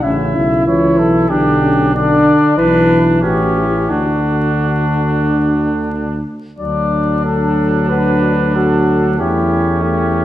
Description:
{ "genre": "classical, brass quintet", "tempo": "91 BPM", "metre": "4/4", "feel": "uneven beats, rubato", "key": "D major", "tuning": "A4 = 445 Hz", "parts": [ { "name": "mellow cornet", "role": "melody", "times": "0.0-10.2 s", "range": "F#4 to E5", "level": "-19 LUFS", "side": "left 4 dB", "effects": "none" }, { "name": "clear trumpet", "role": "second line", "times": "0.0-10.2 s", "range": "C#4 to E4", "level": "-20 LUFS", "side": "right 3 dB", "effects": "none" }, { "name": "clear trombone", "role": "accompaniment", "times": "0.0-10.2 s", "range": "C#3 to F#4", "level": "-19 LUFS", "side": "right 2 dB", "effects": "none" }, { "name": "mellow French horn", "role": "accompaniment", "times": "0.0-10.2 s", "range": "F#3 to F#4", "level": "-18 LUFS", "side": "left 1 dB", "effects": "none" }, { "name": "warm bass trombone", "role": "bass", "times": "0.0-10.2 s", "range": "A1 to E2", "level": "-18 LUFS", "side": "right 1 dB", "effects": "none" } ], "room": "wet recital hall reverb, RT60 1.4 s", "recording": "vinyl crackle", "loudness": "-12 LUFS", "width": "side -13 dB against mid", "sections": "0.0-6.6 A section; 6.6-10.2 B section", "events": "none", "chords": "0.0 A; 1.3 G/B; 2.6 E5/B; 3.2 A7; 3.9 D; 9.2 A7/E" }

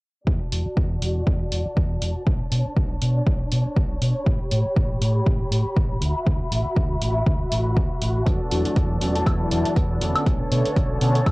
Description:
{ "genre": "filtered disco house", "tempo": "120 BPM", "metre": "4/4", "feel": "swing 56% on 16ths", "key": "unclear", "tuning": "A4 = 440 Hz", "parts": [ { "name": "dark symphonic string section", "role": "sustained chords", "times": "0.3-11.3 s", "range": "D3 to B5", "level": "-29 LUFS", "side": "equal", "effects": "sidechain pumping, low-pass filter, cassette tape" }, { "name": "overdriven fingered electric bass", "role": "bass", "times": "0.3-11.3 s", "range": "E1 to B2", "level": "-24 LUFS", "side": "equal", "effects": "sidechain pumping, low-pass filter" }, { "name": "electronic kick drum", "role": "drums", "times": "0.3-11.3 s", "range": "none", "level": "-22 LUFS", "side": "equal", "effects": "overdrive, cassette tape" }, { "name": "electronic hi-hat and woodblock", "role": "drums", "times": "0.5-11.3 s", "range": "none", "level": "-30 LUFS", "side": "equal", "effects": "sidechain pumping on hats, cassette tape, sidechain pumping on perc" }, { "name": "direct-recorded clean electric guitar", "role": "riff", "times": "8.3-11.3 s", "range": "F#3 to A4", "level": "-31 LUFS", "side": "right 1 dB", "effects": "vintage 12-bit sampler grit, sidechain pumping, low-pass filter, cassette tape" }, { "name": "funky polysynth comp", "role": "accompaniment", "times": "8.5-11.2 s", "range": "D3 to C#5", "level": "-26 LUFS", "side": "equal", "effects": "chorus, phaser, cassette tape, sidechain pumping, low-pass filter" } ], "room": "little or no reverb", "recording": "home recording on cassette", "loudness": "-20 LUFS", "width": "side -23 dB against mid", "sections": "0.3-11.3 A section", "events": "filter sweep 0.3-11.3", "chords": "0.3 E9sus4; 2.3 Bm9; 4.3 A9; 6.0 D69; 8.3 E9sus4; 10.3 Bm9" }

